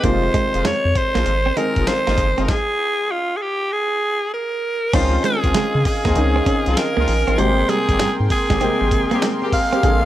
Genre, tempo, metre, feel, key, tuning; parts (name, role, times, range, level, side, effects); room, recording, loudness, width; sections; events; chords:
R&B, new jack swing; 98 BPM; 4/4; swing 65% on 16ths; Ab major; A4 = 441 Hz
breathy alto saxophone; melody; 0.0-10.1 s; F4 to F5; -20 LUFS; right 1 dB; plate reverb
warm baby grand piano; accompaniment; 0.0-10.1 s; C3 to G5; -24 LUFS; left 2 dB; plate reverb
direct-recorded clean electric guitar; riff; 0.0-9.9 s; G3 to Eb4; -25 LUFS; right 6 dB; lush chorus
warm horn section; stabs; 0.0-10.1 s; F3 to Ab4; -28 LUFS; left 3 dB; plate reverb
round analog bass; bass; 0.0-10.1 s; F1 to Db3; -20 LUFS; equal
dusty soul sampler-style drum kit; drums; 0.0-10.0 s; crash cymbal, hi-hat, kick drum, snare drum; -22 LUFS; equal
brassy analog pad; sustained chords; 4.9-10.1 s; Ab4 to C6; -27 LUFS; equal; chorus, plate reverb
moderate small room reverb, RT60 0.5 s; -16 LUFS; side -13 dB against mid
0.0-4.9 A section; 4.9-10.1 B section
stop 2.5-4.9
0.0 Fm7; 4.9 Dbmaj9; 7.4 Abmaj9